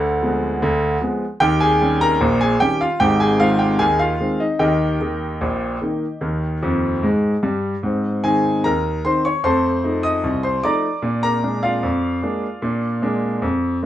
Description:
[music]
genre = ragtime piano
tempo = 75 BPM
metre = 2/4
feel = straight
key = Ab major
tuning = A4 = 440 Hz
[part]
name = warm grand piano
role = solo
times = 0.0-13.9 s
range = Ab1 to Eb6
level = -17 LUFS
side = equal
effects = none
[sound]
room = moderate studio reverb, RT60 0.5 s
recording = band playing live in one room, nothing above 10.6 kHz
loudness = -17 LUFS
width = side -12 dB against mid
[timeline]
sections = 0.0-7.8 A section; 7.8-13.9 B section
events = grand piano fill 6.6-7.8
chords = 0.0 Ddim7; 1.4 Eb7; 3.0 Ab; 4.6 Eb; 7.8 Ab; 9.4 F7; 11.0 Bb7

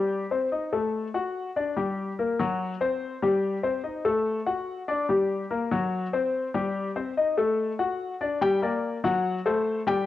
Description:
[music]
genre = latin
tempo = 144 BPM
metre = 4/4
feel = straight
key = G harmonic minor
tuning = A4 = 438 Hz
[part]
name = clear concert grand piano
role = solo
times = 0.0-10.1 s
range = F#3 to G5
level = -24 LUFS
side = left 3 dB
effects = cassette tape
[sound]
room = moderate spring reverb, RT60 1.6 s, small room ambience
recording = home recording on cassette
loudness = -24 LUFS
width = side -13 dB against mid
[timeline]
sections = 0.0-8.4 A section; 8.4-10.1 B section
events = none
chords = 0.1 Am7b5; 0.9 D; 1.8 Gm; 2.6 C5; 3.4 Am7b5; 4.3 D; 5.1 Gm; 5.9 C5; 6.8 Am7b5; 7.6 D; 8.4 Gm; 9.2 F#dim

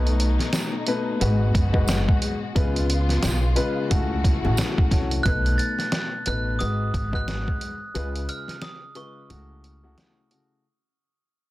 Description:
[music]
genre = hip hop, boom-bap hip-hop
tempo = 89 BPM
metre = 4/4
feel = swing 59% on 16ths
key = F# dorian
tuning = A4 = 440 Hz
[part]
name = dark upright piano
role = accompaniment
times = 0.0-10.6 s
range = G#2 to B4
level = -28 LUFS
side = left 3 dB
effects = cassette tape, high-pass filter, low-pass filter
[part]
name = warm studio string section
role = sustained chords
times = 0.0-5.2 s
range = B2 to F#4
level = -32 LUFS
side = left 2 dB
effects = high-pass filter, low-pass filter
[part]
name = upright bass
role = bass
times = 0.0-9.9 s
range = F#1 to C#2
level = -24 LUFS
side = equal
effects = none
[part]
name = trip hop sampler-style drum kit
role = drums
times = 0.1-10.5 s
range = hi-hat, kick drum, snare drum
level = -24 LUFS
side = equal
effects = none
[part]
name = tambourine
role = percussion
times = 0.5-4.8 s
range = none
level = -37 LUFS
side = right 5 dB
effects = none
[part]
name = glockenspiel with brass mallets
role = melody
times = 5.2-9.9 s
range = C#6 to A6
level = -30 LUFS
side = right 2 dB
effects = high-pass filter, low-pass filter
[sound]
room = small room ambience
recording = dense, heavily limited modern master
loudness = -21 LUFS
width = side -17 dB against mid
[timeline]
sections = 0.0-5.3 A section; 5.3-10.6 B section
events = fade-out 5.3-10.6; break 8.0-10.6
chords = 0.0 B7; 1.2 G#m7; 2.6 C#7; 3.9 F#m7; 5.3 B7; 6.6 G#m7; 8.0 C#7; 9.3 F#m7/C#

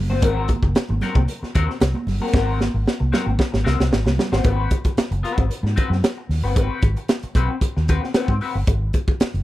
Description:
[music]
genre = funk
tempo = 114 BPM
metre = 4/4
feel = straight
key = Ab mixolydian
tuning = A4 = 439 Hz
[part]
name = vintage muted fingered electric bass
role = bass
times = 0.0-9.4 s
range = Gb1 to Ab2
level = -21 LUFS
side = equal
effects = none
[part]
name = electric guitar at the edge of break-up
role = accompaniment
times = 0.1-8.6 s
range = C4 to C5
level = -26 LUFS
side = left 5 dB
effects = wah, spring reverb
[part]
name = congas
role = percussion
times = 0.1-4.4 s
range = none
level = -29 LUFS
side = right 4 dB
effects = none
[part]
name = crisp fusion drum kit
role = drums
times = 0.2-9.4 s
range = hi-hat, kick drum, snare drum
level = -20 LUFS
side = equal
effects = none
[sound]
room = little or no reverb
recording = none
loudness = -18 LUFS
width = side -16 dB against mid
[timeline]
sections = 0.0-4.4 A section; 4.4-9.4 B section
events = drum fill 2.3-4.4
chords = 0.0 Ab9; 4.4 Ab7#9

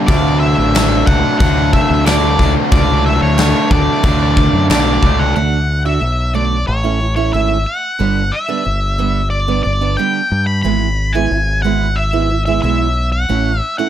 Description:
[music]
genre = quiet-loud alternative rock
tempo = 91 BPM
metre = 4/4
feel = straight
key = unclear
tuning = A4 = 439 Hz
[part]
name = fuzz guitar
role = riff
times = 0.0-5.3 s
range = D3 to D4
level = -15 LUFS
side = equal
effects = distortion
[part]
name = octave-fuzz lead guitar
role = melody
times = 0.1-13.9 s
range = C#5 to B5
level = -19 LUFS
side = left 1 dB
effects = distortion
[part]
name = growling fingered electric bass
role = bass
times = 0.1-13.6 s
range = G1 to G2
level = -16 LUFS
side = equal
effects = overdrive
[part]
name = huge arena drum kit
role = drums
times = 0.1-5.2 s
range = crash cymbal, kick drum, snare drum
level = -16 LUFS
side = left 1 dB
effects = none
[part]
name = picked steel-string acoustic guitar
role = arpeggios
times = 5.4-13.9 s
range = D3 to F#4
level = -19 LUFS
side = right 9 dB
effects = none
[sound]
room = light reverb, small room ambience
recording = none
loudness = -12 LUFS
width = side -10 dB against mid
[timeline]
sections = 0.0-5.4 A section; 5.4-13.9 B section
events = half time 5.4-13.9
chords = 0.1 D; 6.7 A; 8.0 G; 10.6 E/G#; 13.3 A

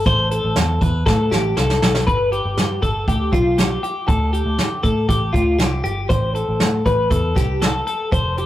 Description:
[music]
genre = jangly indie pop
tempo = 119 BPM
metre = 4/4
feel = straight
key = A minor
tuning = A4 = 439 Hz
[part]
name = twelve-string electric guitar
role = arpeggios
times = 0.0-8.5 s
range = F4 to C5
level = -20 LUFS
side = left 2 dB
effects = spring reverb
[part]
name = vintage muted picked electric bass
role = bass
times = 0.0-8.4 s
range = F1 to D3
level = -21 LUFS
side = equal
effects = none
[part]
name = soft brush drum kit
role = drums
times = 0.1-8.5 s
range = hi-hat, kick drum, snare drum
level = -20 LUFS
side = right 1 dB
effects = none
[sound]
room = moderate small room reverb, RT60 0.5 s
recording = rough rehearsal-room recording, warm saturation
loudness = -16 LUFS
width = side -13 dB against mid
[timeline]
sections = 0.0-2.1 A section; 2.1-8.5 B section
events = drum fill 1.1-2.1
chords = 0.0 Am; 2.1 G; 4.1 D5; 6.1 Am

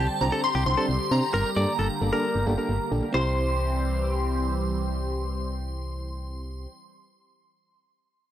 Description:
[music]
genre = pop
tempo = 133 BPM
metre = 4/4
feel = straight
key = C mixolydian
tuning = A4 = 440 Hz
[part]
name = shimmering bell with halo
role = melody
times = 0.0-6.7 s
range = A5 to C6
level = -31 LUFS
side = equal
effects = ensemble chorus, phaser, tape echo
[part]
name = direct-recorded clean electric guitar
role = second line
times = 0.0-4.5 s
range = G4 to D5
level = -31 LUFS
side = left 1 dB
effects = tape echo
[part]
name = phased analog pad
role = sustained chords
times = 0.0-6.7 s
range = D3 to G4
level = -32 LUFS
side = equal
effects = phaser, chorus
[part]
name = solid FM bass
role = bass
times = 0.0-6.7 s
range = G1 to C3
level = -27 LUFS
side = equal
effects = none
[part]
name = FM electric piano with tremolo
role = accompaniment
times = 0.2-6.7 s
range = Bb3 to C5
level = -32 LUFS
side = right 2 dB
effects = none
[sound]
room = digital ambience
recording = dry, gritty hardware recording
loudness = -24 LUFS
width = side -11 dB against mid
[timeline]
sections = 0.0-3.1 A section; 3.1-6.8 B section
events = none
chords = 0.0 Csus2; 1.3 Gmadd9; 3.1 C

